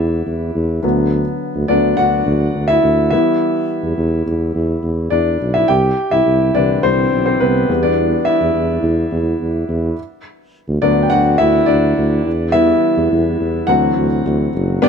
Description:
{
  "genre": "piano-driven pop",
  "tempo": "105 BPM",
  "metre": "4/4",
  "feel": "straight",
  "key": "unclear",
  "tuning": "A4 = 439 Hz",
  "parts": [
    { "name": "clear grand piano", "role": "accompaniment", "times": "0.0-14.9 s", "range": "G2 to G5", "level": "-15 LUFS", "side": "left 1 dB", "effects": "none" },
    { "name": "warm tuba", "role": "bass", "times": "0.0-14.9 s", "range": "F#1 to E2", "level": "-17 LUFS", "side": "right 1 dB", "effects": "none" }
  ],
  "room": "light reverb",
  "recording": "dark, warm production",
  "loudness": "-13 LUFS",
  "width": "side -6 dB against mid",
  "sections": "0.0-14.8 A section",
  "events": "grand piano solo 0.0-14.8",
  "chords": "0.0 Em; 0.8 Bm/D; 3.1 Em; 5.7 Cmaj7; 7.7 Em; 10.0 Bm/D; 12.3 Em; 13.7 D7"
}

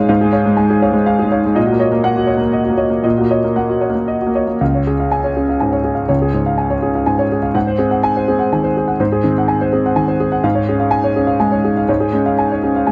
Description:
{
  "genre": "neoclassical minimalist piano",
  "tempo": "123 BPM",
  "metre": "3/4",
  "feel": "rubato",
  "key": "Db major",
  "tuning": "A4 = 442 Hz",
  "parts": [
    { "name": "warm grand piano", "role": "solo", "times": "0.0-12.9 s", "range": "Db2 to Ab5", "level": "-16 LUFS", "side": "equal", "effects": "none" }
  ],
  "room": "light reverb",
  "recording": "dark, warm production",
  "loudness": "-16 LUFS",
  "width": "mono",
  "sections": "0.0-4.6 A section; 4.6-12.9 B section",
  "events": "none",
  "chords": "0.0 Db/Ab; 1.6 Gb6/Bb; 4.6 Db; 7.6 Ab7; 10.4 Db/Ab"
}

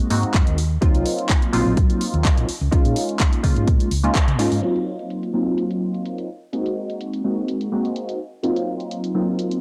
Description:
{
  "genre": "filtered disco house",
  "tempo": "126 BPM",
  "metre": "4/4",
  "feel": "swing 53% on 16ths",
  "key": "Eb dorian",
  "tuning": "A4 = 440 Hz",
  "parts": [
    { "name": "funky polysynth comp", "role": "accompaniment", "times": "0.0-9.6 s", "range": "Gb3 to Gb4", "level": "-25 LUFS", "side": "equal", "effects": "chorus, phaser, sidechain pumping, low-pass filter, cassette tape" },
    { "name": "hollow-body short-scale fingered electric bass", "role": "bass", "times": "0.0-4.6 s", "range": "Bb1 to Db3", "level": "-24 LUFS", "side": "equal", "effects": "tube saturation, sidechain pumping, low-pass filter" },
    { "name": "house drum kit", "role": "drums", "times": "0.1-9.6 s", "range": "handclaps, hi-hat", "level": "-30 LUFS", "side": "equal", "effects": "overdrive, low-pass filter on hats, low-pass filter on snare" },
    { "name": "electronic kick drum", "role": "drums", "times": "0.3-4.3 s", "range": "none", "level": "-20 LUFS", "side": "equal", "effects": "overdrive" }
  ],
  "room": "light reverb, digital ambience",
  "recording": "home recording on cassette",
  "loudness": "-21 LUFS",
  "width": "mono",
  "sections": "0.0-4.6 A section; 4.6-9.6 B section",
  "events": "band accent 4.2; filter sweep on drum 4.6-9.6",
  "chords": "0.0 Ab7; 0.6 Ebm69; 2.5 Db6; 4.6 Ebm69; 6.3 Ab7; 8.2 Ebm69"
}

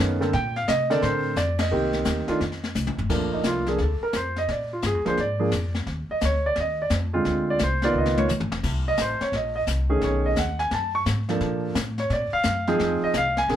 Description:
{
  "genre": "jazz piano trio",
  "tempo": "173 BPM",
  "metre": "4/4",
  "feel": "swing 65% on 8ths",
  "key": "Bb major",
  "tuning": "A4 = 440 Hz",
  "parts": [
    { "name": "warm grand piano", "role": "melody", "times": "0.0-13.6 s", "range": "D3 to C#6", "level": "-23 LUFS", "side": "right 1 dB", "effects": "none" },
    { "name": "upright bass", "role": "bass", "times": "0.0-13.6 s", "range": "F1 to C3", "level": "-28 LUFS", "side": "equal", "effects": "none" },
    { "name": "jazz brush drum kit", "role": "drums", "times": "0.2-13.6 s", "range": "brushed snare drum, crash cymbal, hi-hat, kick drum, ride cymbal, snare drum, toms", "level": "-29 LUFS", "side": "left 2 dB", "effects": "none" }
  ],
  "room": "moderate small room reverb, RT60 0.5 s",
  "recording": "band playing live in one room",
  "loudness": "-22 LUFS",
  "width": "side -10 dB against mid",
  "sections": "0.0-3.1 A section; 3.1-13.6 B section",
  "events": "band accent 1.5; drum fill 2.8-3.1, 7.9-8.6; grand piano solo 3.1-13.6",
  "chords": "0.3 Bbmaj9; 1.7 Cm7; 2.4 F7; 3.1 Bbmaj7; 4.5 Bb7; 5.9 Ebsus2; 7.3 Dm7b5; 7.9 Db13; 8.6 Cm7; 10.0 B13; 11.4 Bbmaj7; 12.8 Fm7"
}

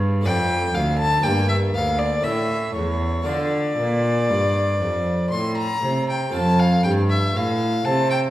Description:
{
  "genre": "classical, baroque-style sonata movement with continuo",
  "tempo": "59 BPM",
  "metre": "3/4",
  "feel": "straight",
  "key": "D minor",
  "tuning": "A4 = 444 Hz",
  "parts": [
    { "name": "harpsichord", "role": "accompaniment", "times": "0.0-8.3 s", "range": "D2 to D5", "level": "-24 LUFS", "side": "right 1 dB", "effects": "none" },
    { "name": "rich cello", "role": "bass", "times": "0.0-8.3 s", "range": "D2 to D3", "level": "-23 LUFS", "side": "right 1 dB", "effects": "none" },
    { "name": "warm violin", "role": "melody", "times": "0.3-8.2 s", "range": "C#5 to C6", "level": "-23 LUFS", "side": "left 2 dB", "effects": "none" }
  ],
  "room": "wet recital hall reverb, RT60 1.4 s",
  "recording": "heard from further back in the room",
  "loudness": "-18 LUFS",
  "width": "side -14 dB against mid",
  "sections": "0.0-6.3 A section; 6.3-8.3 A section",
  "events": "none",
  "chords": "0.2 Dm/F; 1.2 Gm; 2.2 A; 3.3 Dm; 6.3 F"
}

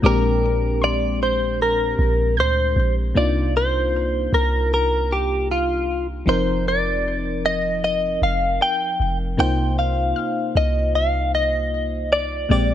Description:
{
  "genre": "R&B",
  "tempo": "77 BPM",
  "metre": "4/4",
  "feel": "swing 54% on 16ths",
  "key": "C minor",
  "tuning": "A4 = 440 Hz",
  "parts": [
    { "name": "FM electric piano", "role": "accompaniment", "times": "0.0-12.7 s", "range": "Bb2 to D5", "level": "-25 LUFS", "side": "left 3 dB", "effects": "chorus" },
    { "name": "warm 808-style bass", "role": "bass", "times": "0.0-12.7 s", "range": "F1 to D2", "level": "-23 LUFS", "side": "equal", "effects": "none" },
    { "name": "soft round pluck", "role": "texture", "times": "0.0-3.5, 10.2-12.5 s", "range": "C6 to G6", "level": "-32 LUFS", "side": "right 2 dB", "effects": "chorus, ping-pong delay" },
    { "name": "direct-recorded clean electric guitar", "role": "melody", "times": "0.1-12.7 s", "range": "F4 to G5", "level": "-21 LUFS", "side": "equal", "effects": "analog chorus" }
  ],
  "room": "light reverb, digital ambience",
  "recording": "none",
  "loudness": "-18 LUFS",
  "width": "side -10 dB against mid",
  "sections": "0.0-3.2 A section; 3.2-12.7 B section",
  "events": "none",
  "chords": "0.0 Bb13; 3.2 Cm11; 6.3 F7sus4; 9.4 Cm7"
}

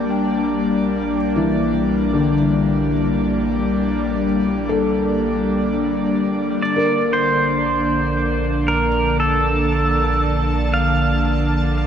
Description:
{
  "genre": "ambient",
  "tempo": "free time",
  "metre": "none",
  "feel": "none",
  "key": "unclear",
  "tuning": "A4 = 440 Hz",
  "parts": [
    { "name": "airy breathy pad", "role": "sustained chords", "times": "0.0-11.9 s", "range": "D3 to A5", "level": "-19 LUFS", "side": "left 1 dB", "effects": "chorus, shimmer reverb" },
    { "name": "felt-muted upright piano", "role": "arpeggios", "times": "0.0-11.9 s", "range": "D3 to A5", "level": "-25 LUFS", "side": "left 2 dB", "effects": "shimmer reverb, ping-pong delay" },
    { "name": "deep rumbling drone", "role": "bass", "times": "0.0-11.9 s", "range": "Bb1", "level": "-25 LUFS", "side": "right 1 dB", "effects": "built-in reverb" },
    { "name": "pedal steel guitar", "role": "melody", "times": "6.6-11.9 s", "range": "A4 to F5", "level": "-20 LUFS", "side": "right 1 dB", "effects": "shimmer reverb, ping-pong delay" }
  ],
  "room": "wet concert hall reverb, RT60 1.8 s",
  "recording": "cassette tape",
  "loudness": "-16 LUFS",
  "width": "side -8 dB against mid",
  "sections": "0.0-11.9 A section",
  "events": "none",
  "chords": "0.0 Gm/Bb"
}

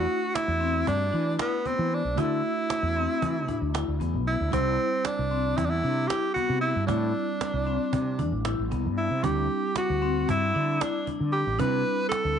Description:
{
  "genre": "progressive instrumental, band music in an uneven meter",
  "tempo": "229 BPM (eighths)",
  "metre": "9/8",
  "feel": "straight",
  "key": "E minor",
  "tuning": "A4 = 440 Hz",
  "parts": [
    { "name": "clear tenor saxophone", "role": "melody", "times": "0.0-12.4 s", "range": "B3 to B4", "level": "-27 LUFS", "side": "equal", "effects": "none" },
    { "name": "bell-like tine electric piano", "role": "accompaniment", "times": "0.0-12.4 s", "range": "G3 to F#4", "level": "-34 LUFS", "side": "right 17 dB", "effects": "medium stereo tremolo" },
    { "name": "vibraphone with medium hard mallets", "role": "arpeggios", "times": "0.0-12.4 s", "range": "B3 to E4", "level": "-32 LUFS", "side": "left 12 dB", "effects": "none" },
    { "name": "fretless electric bass", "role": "bass", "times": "0.0-12.4 s", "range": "A1 to E3", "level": "-28 LUFS", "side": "equal", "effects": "lush chorus" },
    { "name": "cajon", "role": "drums", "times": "0.1-12.2 s", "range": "none", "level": "-34 LUFS", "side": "right 6 dB", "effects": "none" }
  ],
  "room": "moderate spring reverb, RT60 1.7 s",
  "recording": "1960s-style stereo with parts hard left and right, nothing above 10.5 kHz",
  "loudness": "-24 LUFS",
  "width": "side -8 dB against mid",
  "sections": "0.0-12.4 A section",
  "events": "none",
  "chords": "0.0 E7sus2; 4.5 C69; 9.2 D7sus4"
}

